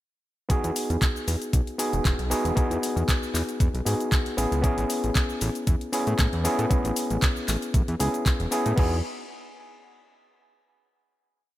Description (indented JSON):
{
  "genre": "nu-disco, nu disco",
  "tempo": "116 BPM",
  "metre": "4/4",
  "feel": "swing 54% on 16ths",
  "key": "E major",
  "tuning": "A4 = 441 Hz",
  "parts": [
    { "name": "overdriven reed electric piano", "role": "accompaniment", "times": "0.5-9.0 s", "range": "B3 to G#4", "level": "-28 LUFS", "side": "equal", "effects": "tape echo" },
    { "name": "fat analog bass", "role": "bass", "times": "0.5-9.0 s", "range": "E1 to A2", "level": "-27 LUFS", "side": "equal", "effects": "none" },
    { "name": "electronic kick drum", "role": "drums", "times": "0.5-8.9 s", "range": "none", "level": "-23 LUFS", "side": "equal", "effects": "none" },
    { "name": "pop drum kit", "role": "drums", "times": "0.5-8.9 s", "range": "crash cymbal, handclaps, hi-hat, shaker", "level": "-30 LUFS", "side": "left 1 dB", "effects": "none" }
  ],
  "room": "digital ambience",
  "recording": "none",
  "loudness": "-22 LUFS",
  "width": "side -15 dB against mid",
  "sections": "0.5-8.8 drop; 8.8-10.8 final chord",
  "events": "drop 0.5-8.8",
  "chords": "0.5 Emaj7; 4.4 Amaj7; 8.8 Emaj7",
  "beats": "| 0.50 1.02 1.53 2.05 | 2.57 3.08 3.60 4.12 | 4.64 5.15 5.67 6.19 | 6.71 7.22 7.74 8.26 | 8.77"
}